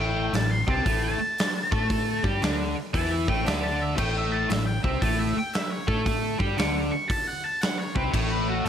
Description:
blues rock power trio and southern rock; 115 BPM; 4/4; swing 65% on 8ths; A4 = 440 Hz
octave-fuzz lead guitar; melody; 0.0-8.7 s; F#4 to C#6; -30 LUFS; equal; distortion
cranked stack guitar; riff; 0.0-8.7 s; A2 to A4; -27 LUFS; equal; overdrive
vintage muted fingered electric bass; bass; 0.0-8.7 s; A1 to A2; -30 LUFS; equal
big rock drum kit; drums; 0.3-8.7 s; crash cymbal, hi-hat, kick drum, snare drum; -28 LUFS; equal
light reverb, studio ambience; -23 LUFS; side -9 dB against mid
0.0-8.7 A section
lead electric guitar solo 0.0-8.7
0.0 A5
0.33 0.85 1.38 | 1.90 2.42 2.94 3.46 | 3.98 4.50 5.02 5.54 | 6.06 6.58 7.10 7.62 | 8.14 8.66

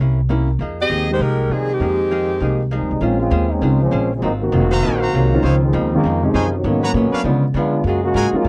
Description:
jazz; 199 BPM; 4/4; swing 62% on 8ths; F minor, Bb minor from 3.0 s; A4 = 436 Hz
archtop guitar, miked and amplified; accompaniment; 0.0-8.5 s; Ab2 to C5; -30 LUFS; equal
upright bass; bass; 0.0-8.5 s; F1 to D3; -21 LUFS; equal
warm baby grand piano; accompaniment; 0.3-8.5 s; D3 to Bb4; -24 LUFS; equal
clear saxophone section; melody; 0.8-2.7 s; Eb3 to Eb5; -22 LUFS; equal
clear trombone section; second line; 2.7-8.5 s; Cb3 to Gb4; -22 LUFS; equal
brilliant trumpet section; stabs; 4.7-8.3 s; D4 to Bb5; -25 LUFS; equal
light reverb; worn, warbling old tape, cassette tape, warbly pitch drift; -18 LUFS; mono
0.0-3.0 A section; 3.0-8.5 B section
trombone section solo 3.0-8.5
0.0 C7b9; 0.6 Fm11; 3.0 Bbm9; 4.2 Ab13; 5.4 Dbmaj9; 6.6 Abm11; 7.2 Db7b9; 7.8 Gbmaj9
0.29 | 0.59 0.90 1.20 1.50 | 1.80 2.11 2.41 2.71 | 3.02 3.32 3.62 3.92 | 4.22 4.53 4.83 5.13 | 5.43 5.74 6.04 6.34 | 6.64 6.94 7.25 7.55 | 7.85 8.15 8.45

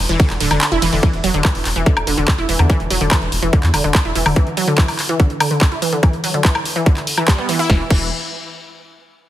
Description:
psychedelic trance; 144 BPM; 4/4; straight; A4 = 440 Hz
round analog bass; bass; 0.0-4.3, 7.7-8.1 s; D1 to E2; -20 LUFS; equal
wide unison pluck; riff; 0.1-8.1 s; D3 to E4; -19 LUFS; right 1 dB; auto-pan, sidechain pumping, dub echo
techno drum kit; drums; 0.1-8.0 s; crash cymbal, handclaps, hi-hat, ride cymbal, snare drum, woodblock; -20 LUFS; left 1 dB; overdrive, studio reverb
electronic kick drum; drums; 0.2-8.0 s; -13 LUFS; equal; studio reverb
light reverb, digital ambience; heavily compressed radio sound, multiband compression; -14 LUFS; side -13 dB against mid
0.0-1.0 A section; 1.0-7.7 B section; 7.7-9.3 C section
drop 0.0-1.0; kick drops out 0.6-1.0
0.0 E5; 7.7 N.C.
0.20 0.61 | 1.03 1.45 1.86 2.28 | 2.70 3.11 3.53 3.95 | 4.36 4.78 5.20 5.61 | 6.03 6.45 6.86 7.28 | 7.70

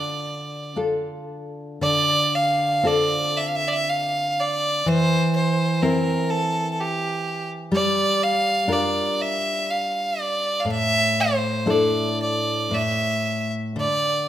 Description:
celtic folk, Celtic slow air; 55-63 BPM; 3/4; rubato; D minor; A4 = 440 Hz
clear fiddle; melody; 0.0-14.3 s; G4 to F5; -22 LUFS; right 1 dB
nylon-string guitar; accompaniment; 0.0-14.3 s; A2 to C5; -24 LUFS; left 1 dB
moderate concert hall reverb, RT60 1.8 s; minimal, uncompressed stereo recording; -20 LUFS; side -11 dB against mid
0.0-1.8 A section; 1.8-14.3 B section
0.0 Dm; 1.8 Dm7; 4.9 C/E; 7.7 Gm7; 10.7 Asus4; 12.7 N.C.; 13.8 D5
0.75 | 1.81 2.84 3.85 | 4.85 5.82 6.77 | 7.72 8.69 9.66 | 10.66 11.69 12.72 | 13.77

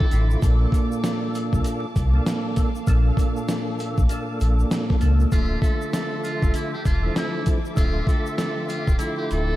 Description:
hip hop, boom-bap hip-hop; 98 BPM; 4/4; swing 62% on 16ths; D minor; A4 = 436 Hz
trumpet with metal mute; melody; 0.0-0.4, 5.3-9.6 s; E4 to A4; -33 LUFS; right 1 dB; high-pass filter, low-pass filter, tape echo
percussive tonewheel organ; accompaniment; 0.0-9.6 s; Bb2 to E5; -27 LUFS; right 1 dB; overdrive, chorus vibrato, slow rotary speaker, high-pass filter, low-pass filter
warm studio string section; sustained chords; 0.0-9.6 s; F3 to D6; -34 LUFS; equal; high-pass filter, low-pass filter
dusty soul sampler-style drum kit; drums; 0.0-9.5 s; hi-hat, kick drum, snare drum; -23 LUFS; equal; vintage 12-bit sampler grit
sub bass with octave; bass; 0.1-9.5 s; D1 to C#2; -20 LUFS; equal
egg shaker; percussion; 0.1-9.5 s; -48 LUFS; left 5 dB
moderate lush hall reverb, RT60 2.6 s; dreamy mix soaked in reverb, vinyl crackle; -20 LUFS; side -15 dB against mid
0.0-9.6 A section
0.4 Bbmaj7; 5.3 Dmadd9
| 0.42 1.04 1.65 2.26 | 2.87 3.49 4.10 4.71 | 5.32 5.93 6.55 7.16 | 7.77 8.38 9.00

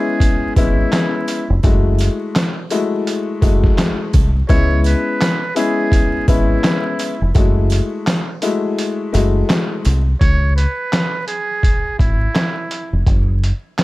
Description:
hip hop, boom-bap hip-hop; 84 BPM; 4/4; swing 60% on 16ths; A4 = 442 Hz
trumpet with metal mute; melody; 0.0-13.0 s; E4 to C#5; -23 LUFS; right 3 dB; high-pass filter, low-pass filter, slapback echo
dark upright piano; accompaniment; 0.0-10.0 s; G#3 to F#4; -19 LUFS; left 4 dB; high-pass filter, low-pass filter
trip hop sampler-style drum kit; drums; 0.2-13.8 s; handclaps, hi-hat, kick drum, snare drum; -17 LUFS; equal
sleigh bells; percussion; 0.2-10.0 s; -37 LUFS; right 13 dB
deep dub fingered electric bass; bass; 0.6-13.5 s; E#1 to C#2; -15 LUFS; equal
studio reverb; vinyl crackle; -14 LUFS; side -18 dB against mid
0.0-10.2 A section; 10.2-13.8 B section
kick muted 8.8-10.2
0.0 C#m7; 1.6 F#m9; 4.5 C#m7; 7.4 F#m9; 10.2 C#m7; 13.1 N.C.
0.21 0.92 | 1.64 2.35 3.07 3.78 | 4.49 5.21 5.92 6.64 | 7.35 8.07 8.78 9.49 | 10.21 10.92 11.64 12.35 | 13.07 13.78

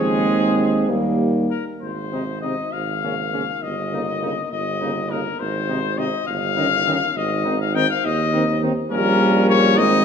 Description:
classical, brass quintet; 68 BPM (dotted quarters); 6/8; uneven beats, rubato; Ab major; A4 = 441 Hz
clear trumpet; melody; 0.0-10.0 s; Ab4 to G5; -22 LUFS; left 7 dB
warm trumpet; second line; 0.0-10.0 s; Ab3 to Eb4; -30 LUFS; right 6 dB
clear French horn; accompaniment; 0.0-10.0 s; Bb3 to Db4; -25 LUFS; left 2 dB
warm euphonium; accompaniment; 0.0-10.0 s; C3 to Ab3; -24 LUFS; right 3 dB
clear tuba; bass; 0.0-10.0 s; G1 to Eb2; -24 LUFS; right 3 dB
wet recital hall reverb, RT60 1.7 s; -18 LUFS; side -7 dB against mid
0.0-1.8 A section; 1.8-10.0 B section
0.0 Ab/Eb; 0.9 Eb; 1.8 Ab; 2.7 Bbm7/Ab; 3.6 Eb7/G; 5.4 Ab; 6.3 Eb7/G; 7.2 Ab; 8.9 Gdim/Bb
0.89 | 1.82 2.73 | 3.63 4.52 | 5.40 6.28 | 7.17 8.05 | 8.92 9.78

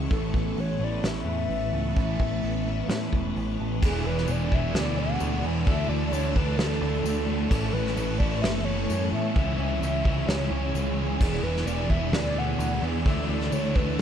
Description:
rock, shoegaze and dream pop; 130 BPM; 4/4; straight; E mixolydian; A4 = 440 Hz
phased string machine; sustained chords; 0.0-14.0 s; B4 to E6; -40 LUFS; equal; ensemble chorus, phaser
twelve-string electric guitar; arpeggios; 0.0-14.0 s; E3 to A4; -37 LUFS; right 11 dB
crunchy overdriven guitar; riff; 0.0-14.0 s; A2 to A4; -33 LUFS; right 12 dB; reverse reverb
thick fuzz guitar; riff; 0.0-14.0 s; E2 to D4; -32 LUFS; left 10 dB; distortion, ensemble chorus
picked electric bass; bass; 0.0-14.0 s; E1 to A2; -29 LUFS; equal
pure sine lead; melody; 0.1-14.0 s; G#4 to F#5; -33 LUFS; equal; chorus, tape echo
vintage brush drum kit; drums; 0.1-14.0 s; crash cymbal, hi-hat, kick drum, snare drum; -27 LUFS; equal
distorted electric guitar; riff; 3.8-14.0 s; A2 to E4; -34 LUFS; equal; distortion
tambourine; percussion; 4.3-13.6 s; -44 LUFS; left 15 dB
small room ambience; dark, warm production; -24 LUFS; side -9 dB against mid
0.0-3.8 A section; 3.8-14.0 B section
0.1 Aadd9; 3.8 E7; 5.7 Dsus2; 7.5 Aadd9; 9.4 C#m; 11.2 E7; 13.1 Dsus2
| 0.11 0.58 1.04 1.50 | 1.97 2.43 2.89 3.35 | 3.82 4.28 4.74 5.21 | 5.67 6.13 6.59 7.05 | 7.52 7.98 8.44 8.90 | 9.37 9.83 10.29 10.75 | 11.21 11.68 12.14 12.60 | 13.06 13.53 13.99

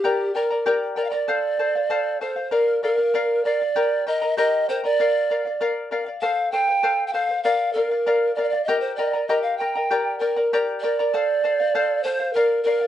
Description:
andean folk, Andean ensemble; 98 BPM; 2/4; straight; A4 = 440 Hz
mellow hollow polished pan flute; melody; 0.0-12.9 s; G4 to G5; -21 LUFS; right 2 dB
charango; accompaniment; 0.0-12.9 s; G4 to Bb5; -24 LUFS; left 3 dB
moderate studio ambience, RT60 0.5 s; nothing above 10.9 kHz; -19 LUFS; side -11 dB against mid
0.0-1.3 A section; 1.3-11.1 B section; 11.1-12.9 B section
0.0 Gm; 1.3 F; 2.5 Bb; 3.8 Eb; 5.0 Bb; 6.2 F; 7.5 Bb; 8.7 Eb; 9.9 Gm; 11.1 F; 12.4 Bb
| 0.04 0.66 | 1.28 1.90 | 2.52 3.14 | 3.75 4.37 | 4.99 5.61 | 6.22 6.84 | 7.45 8.06 | 8.68 9.29 | 9.91 10.52 | 11.13 11.74 | 12.36

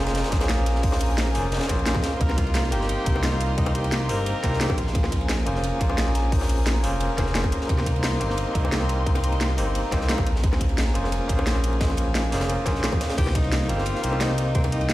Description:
liquid drum and bass; 175 BPM; 4/4; straight; C phrygian; A4 = 439 Hz
overdriven tine electric piano; accompaniment; 0.0-14.9 s; Bb3 to C5; -28 LUFS; equal; fast tremolo, tape echo
rich studio string section; sustained chords; 0.0-13.2 s; Bb4 to C6; -35 LUFS; left 2 dB; sidechain pumping
smooth gliding synth bass; bass; 0.0-14.9 s; F1 to F2; -24 LUFS; equal
crisp fusion drum kit; drums; 0.1-14.9 s; hi-hat, ride cymbal, snare drum; -33 LUFS; right 1 dB; high-pass filter on cymbals, small room ambience, high-pass filter on hats, high-pass filter on snare, high-pass filter on room
drum and bass drum kit; drums; 0.1-14.9 s; crash cymbal, hi-hat, rim click, snare drum; -30 LUFS; equal; overdrive, small room ambience
electronic kick drum; drums; 0.3-14.6 s; -24 LUFS; equal; overdrive, small room ambience
bongos; percussion; 0.4-14.7 s; -35 LUFS; left 5 dB
warm tenor saxophone; melody; 2.2-5.3, 13.2-14.9 s; C4 to C5; -31 LUFS; equal; tape echo
light reverb, studio reverb; played on a big sound system in a bare room, large studio reverb; -21 LUFS; side -16 dB against mid
0.0-13.2 A section; 13.2-14.9 A section
drop 0.0-13.2, 13.2-14.9
0.0 Bbm7; 2.2 Cm7; 4.8 Bbm7; 7.7 Cm7; 10.3 Bbm7; 13.2 Cm7
0.15 0.49 | 0.84 1.18 1.52 1.87 | 2.21 2.55 2.89 3.24 | 3.58 3.92 4.27 4.61 | 4.95 5.29 5.64 5.98 | 6.32 6.67 7.01 7.35 | 7.69 8.04 8.38 8.72 | 9.07 9.41 9.75 10.09 | 10.44 10.78 11.12 11.47 | 11.81 12.15 12.49 12.84 | 13.18 13.52 13.87 14.21 | 14.55 14.89

